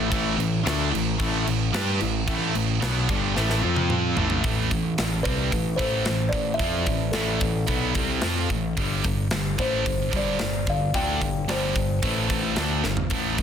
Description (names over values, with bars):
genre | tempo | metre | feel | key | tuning
heavy metal | 111 BPM | 4/4 | straight | A minor | A4 = 440 Hz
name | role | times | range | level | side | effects
crunchy overdriven guitar | riff | 0.0-4.4 s | G2 to G4 | -30 LUFS | left 1 dB | none
high-gain distorted guitar | riff | 0.0-13.4 s | G2 to G4 | -28 LUFS | right 12 dB | distortion
sludgy distorted guitar | riff | 0.0-13.4 s | G2 to G4 | -28 LUFS | left 8 dB | overdrive
growling picked electric bass | bass | 0.0-13.4 s | G1 to G2 | -29 LUFS | equal | overdrive
tight metal drum kit | drums | 0.1-13.4 s | crash cymbal, hi-hat, kick drum, snare drum, toms | -28 LUFS | equal | none
kalimba | melody | 5.2-12.8 s | A4 to G5 | -29 LUFS | left 1 dB | none
room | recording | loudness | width
light reverb | dense, heavily limited modern master | -22 LUFS | side -8 dB against mid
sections
0.0-4.4 A section; 4.4-13.4 B section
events
drum fill 3.4-4.4, 12.8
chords
0.0 A5; 3.6 F5; 4.2 A5; 4.4 Am; 8.8 G5